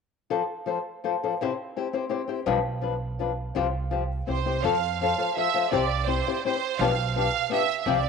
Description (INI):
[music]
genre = mexican folk, mariachi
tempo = 167 BPM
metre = 3/4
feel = straight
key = F major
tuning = A4 = 440 Hz
[part]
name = flamenco guitar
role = accompaniment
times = 0.3-8.0 s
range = B2 to C5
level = -26 LUFS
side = left 7 dB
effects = none
[part]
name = upright bass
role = bass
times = 2.5-8.1 s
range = B1 to F2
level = -30 LUFS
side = right 3 dB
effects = none
[part]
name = bright studio violin section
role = melody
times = 4.3-8.1 s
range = C5 to F5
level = -26 LUFS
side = right 12 dB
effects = tape echo
[sound]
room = wet spring reverb, RT60 1.8 s, small room ambience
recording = 1960s-style stereo with parts hard left and right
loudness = -24 LUFS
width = side -5 dB against mid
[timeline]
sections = 0.3-4.6 A section; 4.6-8.1 B section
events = none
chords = 0.3 F; 1.4 C; 2.5 G7/B (rootless); 3.6 Csus4; 4.3 C; 4.6 F; 5.7 C; 6.8 G7/B